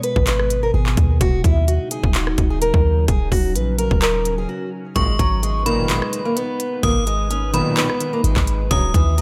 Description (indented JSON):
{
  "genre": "hip hop, trap",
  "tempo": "128 BPM",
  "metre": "4/4",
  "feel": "half-time",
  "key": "G# minor",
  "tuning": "A4 = 440 Hz",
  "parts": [
    { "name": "fingerpicked acoustic archtop guitar", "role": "melody", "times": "0.0-9.2 s", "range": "E3 to B4", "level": "-26 LUFS", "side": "equal", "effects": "digital delay" },
    { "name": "glassy FM pad", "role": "sustained chords", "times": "0.0-9.2 s", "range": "B2 to B4", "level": "-31 LUFS", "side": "equal", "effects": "ensemble chorus, built-in reverb" },
    { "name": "trap drum kit", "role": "drums", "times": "0.0-9.2 s", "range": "handclaps, hi-hat, kick drum, rim click", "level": "-23 LUFS", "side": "equal", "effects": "none" },
    { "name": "clean 808-style bass", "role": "bass", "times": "0.2-9.2 s", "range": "D#1 to D#2", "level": "-22 LUFS", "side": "equal", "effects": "none" },
    { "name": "metallic FM bell", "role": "second line", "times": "5.0-9.2 s", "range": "B5 to D#6", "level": "-27 LUFS", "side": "equal", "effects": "chorus, digital delay" },
    { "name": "big bright polysynth", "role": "stabs", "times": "5.0-8.8 s", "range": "A#1 to D#3", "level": "-29 LUFS", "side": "equal", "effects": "digital delay" }
  ],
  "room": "digital ambience",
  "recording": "none",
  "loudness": "-19 LUFS",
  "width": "mono",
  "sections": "0.0-5.0 A section; 5.0-9.2 B section",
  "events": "break 4.5-5.0",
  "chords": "0.0 G#m; 1.2 D#m7; 5.0 G#madd9; 8.7 D#m7"
}